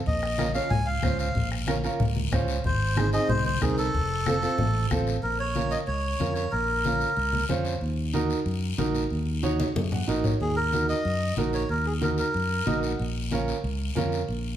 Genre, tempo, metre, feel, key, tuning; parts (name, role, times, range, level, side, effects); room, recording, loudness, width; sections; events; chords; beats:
latin, cumbia; 186 BPM; 4/4; straight; Bb minor; A4 = 440 Hz
melodica; melody; 0.1-7.4, 10.4-12.8 s; Ab4 to Ab5; -28 LUFS; equal
fingered electric bass; bass; 0.1-14.6 s; F1 to Gb2; -29 LUFS; equal
bombo; percussion; 0.1-5.1 s; -32 LUFS; left 1 dB
guiro; percussion; 0.1-14.6 s; -39 LUFS; left 6 dB
warm upright piano; accompaniment; 0.4-14.2 s; C4 to Gb5; -30 LUFS; right 3 dB
congas; percussion; 0.4-14.1 s; -30 LUFS; left 2 dB
wet large studio reverb, RT60 1.2 s; heard from further back in the room; -24 LUFS; side -11 dB against mid
0.0-5.2 A section; 5.2-14.6 B section
drum fill 9.6-10.4; upright piano fill 9.8-10.4, 12.5-13.0
0.1 Bbm; 2.6 Ab; 3.9 F; 5.2 Bbm; 7.8 Ebm; 13.0 Bbm
| 0.06 0.38 0.71 1.03 | 1.35 1.68 2.00 2.32 | 2.65 2.97 3.29 3.61 | 3.94 4.26 4.58 4.91 | 5.23 5.55 5.88 6.20 | 6.52 6.85 7.17 7.49 | 7.82 8.14 8.46 8.79 | 9.11 9.43 9.76 10.08 | 10.40 10.73 11.05 11.37 | 11.70 12.02 12.34 12.67 | 12.99 13.31 13.64 13.96 | 14.29